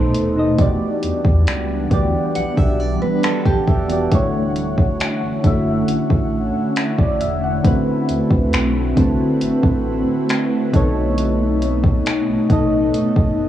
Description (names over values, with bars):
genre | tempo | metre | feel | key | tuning
contemporary R&B | 68 BPM | 4/4 | straight | D major | A4 = 439 Hz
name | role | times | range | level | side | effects
soft electric-piano-like synth keys | accompaniment | 0.0-13.5 s | B2 to A5 | -20 LUFS | equal | chorus, phaser, cassette tape
ethereal airy pad | sustained chords | 0.0-13.5 s | D3 to F#5 | -22 LUFS | equal | ensemble chorus, built-in reverb, sidechain pumping, cassette tape
sub bass with octave | bass | 0.0-13.5 s | D1 to E2 | -22 LUFS | equal | none
smooth R&B drum kit | drums | 0.1-13.4 s | finger snaps, hi-hat, kick drum | -18 LUFS | equal | overdrive, cassette tape
picked steel-string acoustic guitar | arpeggios | 2.4-4.1 s | G4 to F#5 | -24 LUFS | right 5 dB | cassette tape, analog delay
room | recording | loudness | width
light reverb | home recording on cassette, small room ambience | -15 LUFS | side -12 dB against mid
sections
0.0-13.5 A section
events
synth keys fill 2.8-4.1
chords
0.0 B7b9; 0.6 Em9; 4.1 Dmaj9; 7.6 D13; 10.7 B7